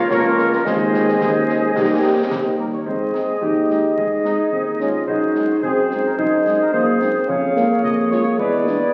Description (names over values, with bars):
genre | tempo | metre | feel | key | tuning
military-style march for wind band | 109 BPM | 2/4 | straight | Ab major | A4 = 440 Hz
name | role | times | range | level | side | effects
dark trumpet section | melody | 0.0-8.9 s | Eb4 to F5 | -28 LUFS | equal | none
bright large flute ensemble | second line | 0.0-2.6 s | Ab4 to Bb4 | -28 LUFS | equal | none
mellow woodwind section | second line | 0.0-8.9 s | F4 to Eb5 | -24 LUFS | equal | none
mellow French horn section | accompaniment | 0.0-8.8 s | Ab3 to Ab4 | -27 LUFS | equal | none
mellow trombone section | sustained chords | 0.0-2.5 s | Eb3 to Bb3 | -28 LUFS | equal | none
warm tuba | bass | 0.0-8.8 s | Db2 to Ab2 | -28 LUFS | equal | none
concert snare drum and concert bass drum | drums | 0.1-8.8 s | none | -35 LUFS | equal | none
warm euphonium | second line | 2.9-8.9 s | G#3 to Eb4 | -22 LUFS | equal | none
room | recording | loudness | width
wet scoring stage reverb, RT60 2.0 s | very old 78 rpm record, vinyl crackle | -18 LUFS | mono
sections
0.0-2.9 A section; 2.9-8.9 B section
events
none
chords
0.0 Bbm/Db; 0.6 Ab/Eb; 1.8 Eb; 2.9 Ab; 5.1 Ab7/Gb; 7.3 Db/F; 8.4 E7